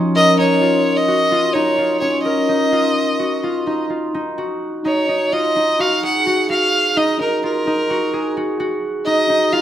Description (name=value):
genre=contemporary instrumental, contemporary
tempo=257 BPM (eighths)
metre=9/8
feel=straight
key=unclear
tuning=A4 = 442 Hz
part: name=concert harp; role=arpeggios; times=0.0-9.6 s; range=F3 to Bb4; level=-18 LUFS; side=equal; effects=none
part: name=clear violin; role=melody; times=0.2-9.6 s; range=Bb4 to Gb5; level=-17 LUFS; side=equal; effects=none
room=moderate recital hall reverb, RT60 1.6 s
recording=none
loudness=-15 LUFS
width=side -11 dB against mid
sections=0.0-4.4 A section; 4.4-9.6 B section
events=none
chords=0.2 Gb; 4.4 Ab5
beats=| 0.15 0.38 0.61 0.85 1.08 1.31 1.55 1.78 2.01 | 2.25 2.48 2.72 2.96 3.19 3.43 3.67 3.90 4.14 | 4.38 4.62 4.85 5.09 5.33 5.56 5.80 6.03 6.27 | 6.50 6.73 6.97 7.20 7.43 7.67 7.90 8.13 8.36 | 8.60 8.83 9.06 9.29 9.53